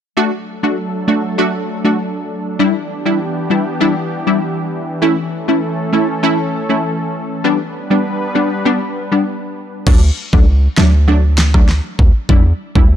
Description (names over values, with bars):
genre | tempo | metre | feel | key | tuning
dancehall | 99 BPM | 4/4 | straight | D major | A4 = 439 Hz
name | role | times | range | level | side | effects
punchy chord stab | accompaniment | 0.2-12.9 s | F#3 to F#4 | -16 LUFS | left 1 dB | chorus
warm analog pad | sustained chords | 0.4-9.8 s | E3 to B4 | -20 LUFS | equal | chorus, sidechain pumping
hard-hitting 808-style bass | bass | 9.9-13.0 s | C#2 to E2 | -12 LUFS | equal | none
pop drum kit | drums | 9.9-12.9 s | crash cymbal, kick drum, rim click, snare drum | -12 LUFS | equal | none
room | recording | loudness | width
light reverb | dark, warm production | -13 LUFS | side -10 dB against mid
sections
0.2-9.9 A section; 9.9-13.0 B section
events
none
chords
0.2 D; 2.6 Em7; 5.0 A; 7.4 G; 9.9 D; 12.3 Em7